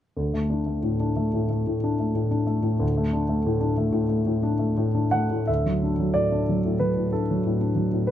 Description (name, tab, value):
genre	neoclassical minimalist piano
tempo	91 BPM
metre	4/4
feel	uneven beats, rubato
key	unclear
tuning	A4 = 442 Hz
part	dark grand piano	solo	0.2-8.1 s	D2 to F#5	-22 LUFS	left 1 dB	none
room	light reverb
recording	close, detailed microphones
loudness	-22 LUFS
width	side -11 dB against mid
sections	0.2-5.5 A section; 5.5-8.1 B section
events	none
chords	0.2 D5; 5.5 D